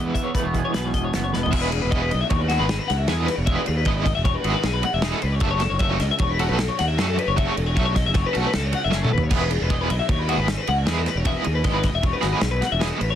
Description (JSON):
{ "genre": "math rock and midwest emo", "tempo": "154 BPM", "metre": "5/4", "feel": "straight", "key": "E major", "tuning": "A4 = 440 Hz", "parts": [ { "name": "electric guitar through a small old amp", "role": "accompaniment", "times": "0.0-3.5 s", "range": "E2 to G#4", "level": "-32 LUFS", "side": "right 6 dB", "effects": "spring reverb" }, { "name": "twelve-string electric guitar", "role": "arpeggios", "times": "0.0-13.2 s", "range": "F#4 to F#5", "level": "-26 LUFS", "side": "left 7 dB", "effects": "lush chorus" }, { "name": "crunchy overdriven guitar", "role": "riff", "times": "0.0-13.0 s", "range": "E3 to A4", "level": "-27 LUFS", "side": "right 3 dB", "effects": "tremolo" }, { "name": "fuzz fingered electric bass", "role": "bass", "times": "0.0-13.2 s", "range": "E1 to F#2", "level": "-24 LUFS", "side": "equal", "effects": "overdrive" }, { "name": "loose indie drum kit", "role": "drums", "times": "0.1-13.1 s", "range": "crash cymbal, hi-hat, kick drum, ride cymbal, snare drum, toms", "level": "-25 LUFS", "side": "equal", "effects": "none" } ], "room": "little or no reverb", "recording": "dense, heavily limited modern master", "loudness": "-19 LUFS", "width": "side -10 dB against mid", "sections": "0.0-1.5 A section; 1.5-13.2 B section", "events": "drum fill 1.3, 8.9-9.3", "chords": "0.0 Emaj9", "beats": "0.35 0.74 1.13 | 1.52 1.92 2.31 2.70 3.09 | 3.48 3.87 4.26 4.65 5.04 | 5.43 5.82 6.21 6.60 6.99 | 7.38 7.76 8.15 8.54 8.93 | 9.32 9.71 10.10 10.49 10.88 | 11.26 11.65 12.04 12.43 12.82" }